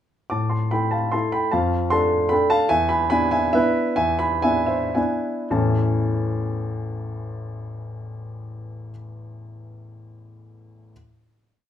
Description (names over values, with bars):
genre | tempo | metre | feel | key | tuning
classical, piano waltz | 104-160 BPM | 3/4 | rubato | unclear | A4 = 440 Hz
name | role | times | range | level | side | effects
warm grand piano | solo | 0.3-10.9 s | A1 to D6 | -20 LUFS | equal | none
room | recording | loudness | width
moderate large studio reverb, RT60 0.8 s | minimal, uncompressed stereo recording | -19 LUFS | side -10 dB against mid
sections
0.3-5.5 A section; 5.5-8.8 final chord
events
slowing down 2.1-5.5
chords
0.3 A5; 1.5 Dm/F; 2.7 E7; 5.5 A